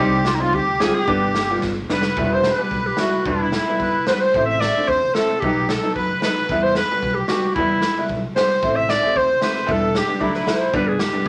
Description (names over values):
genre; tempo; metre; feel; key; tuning
klezmer; 112 BPM; 2/4; straight; E minor; A4 = 440 Hz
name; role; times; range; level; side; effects
bright clarinet; melody; 0.0-11.3 s; Eb4 to E5; -23 LUFS; equal; none
accordion; second line; 0.0-10.7 s; D4 to E5; -27 LUFS; equal; light tremolo tuning
clear upright piano; accompaniment; 0.0-11.3 s; F#3 to G4; -26 LUFS; equal; none
upright bass; bass; 0.0-11.3 s; E1 to F#2; -32 LUFS; equal; none
raw garage drum kit; drums; 0.2-11.3 s; kick drum, snare drum; -29 LUFS; equal; none
room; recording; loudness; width
wet studio ambience, RT60 0.5 s; none; -20 LUFS; mono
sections
0.0-2.2 A section; 2.2-10.7 B section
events
speeding up 0.0-11.3; drum fill 1.6-2.2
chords
0.0 Cm; 1.1 G; 2.2 Em; 4.3 Am; 5.4 B; 6.5 Em; 8.6 Am; 9.7 Em; 10.2 D7; 10.7 G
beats
0.53 | 1.08 1.63 | 2.17 2.72 | 3.26 3.80 | 4.34 4.88 | 5.42 5.96 | 6.50 7.03 | 7.57 8.10 | 8.63 9.16 | 9.68 10.21 | 10.73 11.26